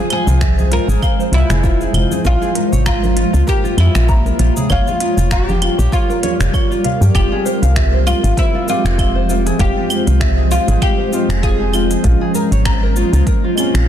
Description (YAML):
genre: organic downtempo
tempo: 98 BPM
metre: 4/4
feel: swing 56% on 16ths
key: F harmonic minor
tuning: A4 = 440 Hz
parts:
  - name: oud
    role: melody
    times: 0.0-11.9 s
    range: E4 to Bb4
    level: -21 LUFS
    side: equal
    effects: ping-pong delay
  - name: granular cloud pad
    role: sustained chords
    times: 0.0-13.9 s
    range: F3 to Db5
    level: -21 LUFS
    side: equal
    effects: built-in reverb, sidechain pumping
  - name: nylon-string guitar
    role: arpeggios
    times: 0.0-13.9 s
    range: F4 to Bb5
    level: -23 LUFS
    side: left 1 dB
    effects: vintage 12-bit sampler grit, tape echo
  - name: organic electronic drum kit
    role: drums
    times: 0.1-13.9 s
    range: cabasa, claves, finger snaps, hi-hat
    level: -25 LUFS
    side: equal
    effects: overdrive, soft clipping on snare
  - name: woody FM bass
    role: bass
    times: 0.3-13.9 s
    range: F1 to G2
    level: -14 LUFS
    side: equal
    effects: none
  - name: congas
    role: percussion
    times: 0.3-7.1 s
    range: none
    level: -25 LUFS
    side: right 2 dB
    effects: none
  - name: electronic kick drum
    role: drums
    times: 0.4-13.4 s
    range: none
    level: -18 LUFS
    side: equal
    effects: overdrive
  - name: tine electric piano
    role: accompaniment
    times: 7.1-13.9 s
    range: Ab3 to G4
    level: -24 LUFS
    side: right 3 dB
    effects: medium tremolo, sidechain pumping, tape echo
room: light reverb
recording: dense, heavily limited modern master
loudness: -12 LUFS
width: side -10 dB against mid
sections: 0.0-7.2 A section; 7.2-13.9 B section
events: none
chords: 0.0 Fm; 2.3 Bbm7; 4.7 Gm7b5; 7.2 Fm; 12.0 Bbm7